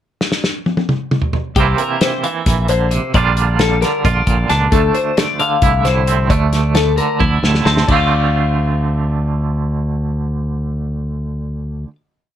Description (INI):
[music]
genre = math rock and midwest emo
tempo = 266 BPM (eighths)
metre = 7/8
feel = straight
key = D minor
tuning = A4 = 440 Hz
[part]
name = loose indie drum kit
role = drums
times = 0.2-8.0 s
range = crash cymbal, hi-hat, kick drum, snare drum, toms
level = -18 LUFS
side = left 1 dB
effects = none
[part]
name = twangy electric guitar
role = accompaniment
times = 1.6-12.0 s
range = D2 to F4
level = -19 LUFS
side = right 7 dB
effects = tremolo
[part]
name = twelve-string electric guitar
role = arpeggios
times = 1.6-12.0 s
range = G4 to D6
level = -19 LUFS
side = left 7 dB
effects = none
[part]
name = growling fingered electric bass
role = bass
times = 1.6-11.8 s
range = Bb1 to D2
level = -17 LUFS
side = equal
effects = overdrive
[sound]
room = little or no reverb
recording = dark, warm production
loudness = -14 LUFS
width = side -10 dB against mid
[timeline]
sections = 0.0-1.6 pickup bar; 1.6-7.9 A section; 7.9-11.1 final chord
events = drum fill 0.2-1.6, 7.2-7.9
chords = 0.0 N.C.; 1.6 C7; 3.1 Gm7/Bb; 4.7 Dm7